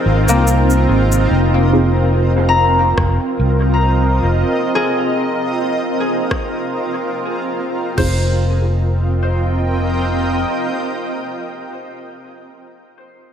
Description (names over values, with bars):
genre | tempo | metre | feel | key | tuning
ambient dub | 72 BPM | 4/4 | swing 54% on 16ths | F minor | A4 = 441 Hz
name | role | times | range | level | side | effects
granular cloud pad | sustained chords | 0.0-11.9 s | C4 to G5 | -19 LUFS | right 1 dB | built-in reverb
concert harp | arpeggios | 0.0-11.4 s | Bb3 to Bb5 | -22 LUFS | left 3 dB | low-pass filter, tape echo
backwards swelling texture | texture | 0.0-1.3 s | Eb4 to Eb5 | -26 LUFS | left 1 dB | built-in reverb
fingered electric bass | bass | 0.1-10.4 s | F1 to C2 | -15 LUFS | equal | tube saturation
electronic cabasa and rim click | drums | 0.3-6.5 s | none | -26 LUFS | left 1 dB | overdrive, studio reverb, dub echo
filtered dub chord stab | stabs | 1.7-1.9, 8.0-11.4 s | C4 to Ab4 | -23 LUFS | right 2 dB | phaser, wide subtle chorus, dub echo
organic electronic drum kit | drums | 3.0-8.2 s | crash cymbal, kick drum | -24 LUFS | equal | overdrive, studio reverb
room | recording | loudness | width
moderate echo chamber reverb, RT60 2.3 s | none | -14 LUFS | side -8 dB against mid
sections
0.0-1.3 A section; 1.3-8.0 B section; 8.0-11.3 C section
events
filter sweep on harp 1.3-8.0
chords
0.0 Fm7